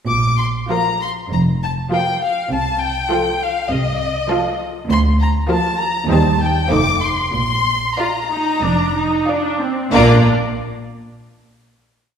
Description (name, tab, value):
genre	quick classical-period movement for string orchestra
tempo	90-102 BPM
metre	4/4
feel	rubato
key	Bb major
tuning	A4 = 441 Hz
part	rich chamber violin section	melody	0.1-10.3 s	Eb5 to D6	-20 LUFS	left 3 dB	none
part	rich chamber double bass section	bass	0.1-10.3 s	F1 to Eb2	-20 LUFS	right 1 dB	none
part	rich symphonic cello section	bass	0.1-10.3 s	D2 to C3	-22 LUFS	right 2 dB	none
part	clear chamber violin section	second line	0.7-10.3 s	F4 to F5	-23 LUFS	left 2 dB	none
part	clear symphonic viola section	accompaniment	0.7-10.3 s	F3 to F4	-20 LUFS	right 2 dB	none
room	wet scoring stage reverb, RT60 1.6 s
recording	heard from further back in the room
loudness	-15 LUFS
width	side -8 dB against mid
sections	0.1-9.9 theme; 9.9-12.2 final chord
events	none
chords	0.1 Bb5; 2.5 F7/C; 4.9 Bb/D; 6.1 Cm/Eb; 6.7 F7; 7.3 Bb